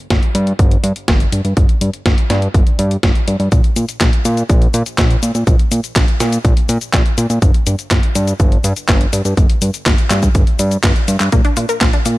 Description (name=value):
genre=italo disco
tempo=123 BPM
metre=4/4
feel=straight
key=Bb major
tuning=A4 = 439 Hz
part: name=fat analog bass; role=bass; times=0.1-12.2 s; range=G1 to Bb2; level=-16 LUFS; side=equal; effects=none
part: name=clean 12-bit digital drum machine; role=drums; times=0.1-12.2 s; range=cabasa, handclaps, hi-hat, snare drum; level=-19 LUFS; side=left 1 dB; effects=none
part: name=electronic kick drum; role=drums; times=0.1-11.9 s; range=none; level=-13 LUFS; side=equal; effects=overdrive
part: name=wide unison pluck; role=arpeggios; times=11.3-12.2 s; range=Bb3 to Bb4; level=-19 LUFS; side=left 2 dB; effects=tape echo
room=digital ambience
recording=none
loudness=-12 LUFS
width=side -18 dB against mid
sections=0.0-12.2 A section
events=drum fill 10.8-11.3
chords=0.0 N.C.; 11.3 Bb